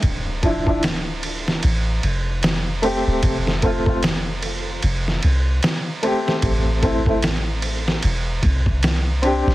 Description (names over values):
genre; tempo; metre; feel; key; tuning
trip hop; 75 BPM; 4/4; swing 59% on 16ths; D minor; A4 = 440 Hz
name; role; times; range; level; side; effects
dark upright piano; accompaniment; 0.0-9.5 s; F3 to G4; -22 LUFS; left 1 dB; tremolo, tape echo
soft 808-style bass; bass; 0.0-9.5 s; D1 to C2; -22 LUFS; equal; none
trip hop sampler-style drum kit; drums; 0.0-9.5 s; kick drum, ride cymbal, snare drum; -22 LUFS; equal; small room ambience
room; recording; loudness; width
light reverb; heavily compressed radio sound, multiband compression, vinyl crackle; -18 LUFS; side -17 dB against mid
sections
0.0-9.5 A section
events
none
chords
0.0 Dm; 3.2 F; 6.4 Am